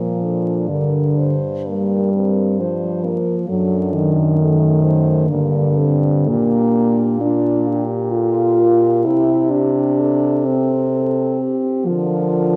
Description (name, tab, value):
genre	classical, lyrical piece for horn quartet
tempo	64 BPM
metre	3/4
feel	uneven beats, rubato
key	unclear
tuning	A4 = 440 Hz
part	mellow French horn	melody	0.0-12.6 s	F4 to C5	-28 LUFS	equal	none
part	mellow French horn	second line	0.0-12.6 s	A3 to A4	-28 LUFS	equal	none
part	dark French horn	accompaniment	0.0-12.6 s	D3 to F4	-19 LUFS	equal	none
part	warm French horn	bass	0.0-12.6 s	F#2 to D3	-25 LUFS	equal	none
room	light reverb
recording	vinyl crackle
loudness	-17 LUFS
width	mono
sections	0.0-12.6 A section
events	none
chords	0.0 Bb; 0.7 Gm7; 3.5 D7/F#; 5.3 Gm; 6.3 Gm/Bb; 9.1 C5; 11.9 Bb/D